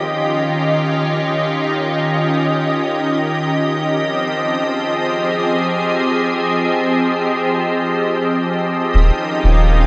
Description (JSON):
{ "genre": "ambient dub", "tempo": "free time", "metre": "none", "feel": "none", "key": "Eb mixolydian", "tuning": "A4 = 440 Hz", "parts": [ { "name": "soft additive organ-like pad", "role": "sustained chords", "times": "0.0-9.9 s", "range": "Eb3 to Eb5", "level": "-18 LUFS", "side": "equal", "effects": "ensemble chorus, built-in reverb" }, { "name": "soft dub sub bass", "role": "bass", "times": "8.9-9.9 s", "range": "Eb1", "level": "-14 LUFS", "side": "equal", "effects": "none" } ], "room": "wet huge ambient reverb, RT60 6.0 s", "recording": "none", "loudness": "-18 LUFS", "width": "mono", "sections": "0.0-8.9 A section", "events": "none", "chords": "0.0 Eb7; 3.9 Fm7; 8.9 Eb7" }